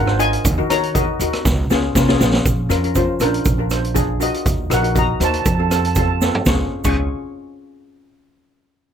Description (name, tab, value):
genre	calypso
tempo	120 BPM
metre	4/4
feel	straight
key	Db major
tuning	A4 = 440 Hz
part	steel pan	melody	0.0-7.1 s	D4 to Db6	-22 LUFS	left 1 dB	none
part	steel pan	accompaniment	0.0-7.1 s	C4 to C5	-22 LUFS	left 2 dB	none
part	upright bass	bass	0.0-7.1 s	Ab1 to Eb3	-21 LUFS	right 1 dB	none
part	street-band drum kit	drums	0.1-7.0 s	crash cymbal, hi-hat, kick drum, rim click, snare drum, toms	-20 LUFS	right 1 dB	none
part	egg shaker	percussion	0.2-7.1 s	none	-28 LUFS	right 7 dB	none
room	little or no reverb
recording	none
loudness	-15 LUFS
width	side -8 dB against mid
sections	0.0-2.5 A section; 2.5-6.5 B section; 6.5-8.5 C section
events	drum fill 1.4-2.5, 6.2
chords	0.4 Ebm; 1.4 Db6; 2.5 Bbm; 3.5 Bb7; 4.5 Ebm; 5.5 F; 6.5 Db